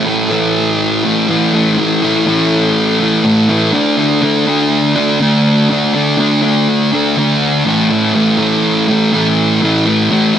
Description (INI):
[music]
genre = rock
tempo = 122 BPM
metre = 4/4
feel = straight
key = unclear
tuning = A4 = 440 Hz
[part]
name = thick fuzz guitar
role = solo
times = 0.0-10.4 s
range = A2 to D4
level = -10 LUFS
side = equal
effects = distortion, wide subtle chorus
[sound]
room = moderate huge ambient reverb, RT60 7.6 s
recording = none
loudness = -10 LUFS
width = side -9 dB against mid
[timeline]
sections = 0.0-3.7 A section; 3.7-10.4 B section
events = none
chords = 0.0 A5; 3.7 D5; 7.7 A5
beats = 0.32 0.80 1.29 | 1.78 2.27 2.76 3.25 | 3.74 4.23 4.72 5.21 | 5.70 6.19 6.68 7.17 | 7.66 8.15 8.64 9.13 | 9.62 10.11